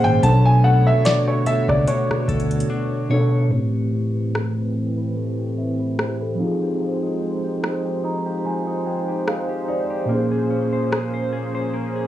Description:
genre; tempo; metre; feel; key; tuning
contemporary R&B; 73 BPM; 4/4; swing 54% on 16ths; unclear; A4 = 440 Hz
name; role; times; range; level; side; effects
warm baby grand piano; melody; 0.0-3.1 s; C#5 to A5; -21 LUFS; equal; analog delay
mellow tine electric piano; accompaniment; 0.0-12.1 s; A2 to Bb5; -21 LUFS; right 1 dB; medium stereo tremolo, low-pass filter
lush unison pad; sustained chords; 0.0-12.1 s; Db3 to C#5; -28 LUFS; right 1 dB; chorus, low-pass filter
direct-recorded clean electric guitar; arpeggios; 0.0-12.1 s; F3 to C#5; -30 LUFS; left 6 dB; low-pass filter, analog delay
fingered electric bass; bass; 0.0-2.6 s; Ab1 to D2; -18 LUFS; left 1 dB; none
booming analog drum machine; drums; 0.2-11.1 s; hi-hat, kick drum, rim click, snare drum; -25 LUFS; equal; overdrive
room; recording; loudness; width
light reverb; home recording on cassette, studio reverb; -18 LUFS; side -13 dB against mid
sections
0.0-3.5 A section; 3.5-12.1 B section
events
silent gap 2.7-3.5; filter sweep 3.5-12.1; tine electric piano fill 7.6-10.1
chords
0.2 Bm9; 3.5 Am9; 6.4 Fm9; 10.1 Bbm9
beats
| 0.23 1.05 1.87 2.70 | 3.52 4.34 5.16 5.98 | 6.80 7.63 8.45 9.27 | 10.09 10.91 11.74

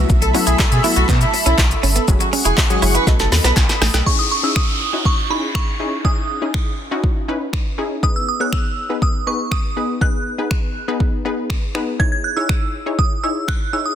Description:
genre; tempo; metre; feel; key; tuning
dance-pop; 121 BPM; 4/4; straight; C# minor; A4 = 440 Hz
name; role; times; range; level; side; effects
wide unison pluck; accompaniment; 0.0-13.9 s; F#3 to C#5; -24 LUFS; left 3 dB; sidechain pumping
lush unison pad; sustained chords; 0.0-4.1 s; G#4 to C#6; -23 LUFS; equal; chorus, phaser, sidechain pumping
direct-recorded clean electric guitar; riff; 0.0-4.0 s; A3 to E4; -24 LUFS; right 8 dB; lush chorus
saturated sub bass; bass; 0.0-4.0 s; E1 to B2; -18 LUFS; equal; sidechain pumping
deep house drum kit; drums; 0.1-13.6 s; finger snaps, handclaps, hi-hat, kick drum, shaker, snare drum; -18 LUFS; equal; soft clipping on snare
mellow horn section; melody; 0.2-3.5 s; E4 to B4; -23 LUFS; right 1 dB; sidechain pumping, tape echo
group handclap; percussion; 0.6-3.7 s; none; -28 LUFS; left 2 dB; none
glassy synth bell; melody; 4.1-13.9 s; B5 to G#6; -23 LUFS; right 3 dB; chorus, tremolo
downlifter; sound effects; 4.1-8.0 s; none; -24 LUFS; left 2 dB; none
room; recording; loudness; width
light reverb; dense, heavily limited modern master; -15 LUFS; side -10 dB against mid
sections
0.0-4.1 A section; 4.1-13.9 B section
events
drop 0.0-4.1; drum fill 3.1-4.1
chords
0.0 B7sus4; 2.1 F#sus2; 3.1 B7; 4.1 C#madd9; 8.0 G#m/B; 12.0 C#madd9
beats
| 0.10 0.59 1.09 1.58 | 2.08 2.58 3.07 3.57 | 4.06 4.56 5.05 5.55 | 6.05 6.54 7.04 7.54 | 8.03 8.53 9.02 9.52 | 10.01 10.51 11.01 11.50 | 12.00 12.49 12.99 13.48

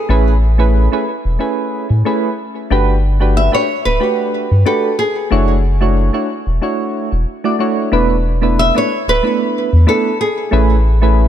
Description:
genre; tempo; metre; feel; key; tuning
sunset chillout; 92 BPM; 4/4; swing 54% on 16ths; A major; A4 = 440 Hz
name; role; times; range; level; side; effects
flamenco guitar; melody; 0.0-11.3 s; G#4 to E5; -18 LUFS; equal; digital delay
soft electric-piano-like synth keys; accompaniment; 0.1-11.3 s; A3 to D5; -17 LUFS; right 1 dB; chorus, auto-pan, digital delay
round analog bass; bass; 0.1-11.3 s; D1 to A2; -13 LUFS; equal; none
room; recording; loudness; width
light reverb, small room ambience; none; -12 LUFS; side -10 dB against mid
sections
0.0-11.3 A section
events
none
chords
0.1 Amaj9; 2.7 Gmaj9; 5.3 Dmaj9; 7.9 E7sus4; 10.5 Amaj9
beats
| 0.10 0.75 1.40 2.05 | 2.71 3.36 4.01 4.66 | 5.32 5.97 6.62 7.27 | 7.92 8.58 9.23 9.88 | 10.53 11.18

